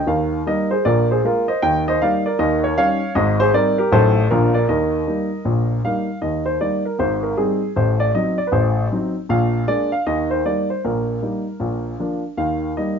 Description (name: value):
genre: jazz, stride piano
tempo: 156 BPM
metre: 4/4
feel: swing 62% on 8ths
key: Eb major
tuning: A4 = 441 Hz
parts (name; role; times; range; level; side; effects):
- clear grand piano; solo; 0.0-13.0 s; Ab1 to G5; -17 LUFS; equal; none
room: light reverb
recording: nothing above 7.5 kHz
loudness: -17 LUFS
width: side -6 dB against mid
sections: 0.0-6.2 A section; 6.2-13.0 A section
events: none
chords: 0.1 Eb; 0.9 Bb5; 1.6 Eb; 2.4 Eb7; 3.2 Abmaj7; 3.9 Adim7; 4.3 Bb; 4.7 Eb; 7.0 Abmaj7; 7.8 Adim7; 9.3 Bb7; 10.1 Eb; 10.8 Eb/Bb; 11.6 Bb; 12.4 Eb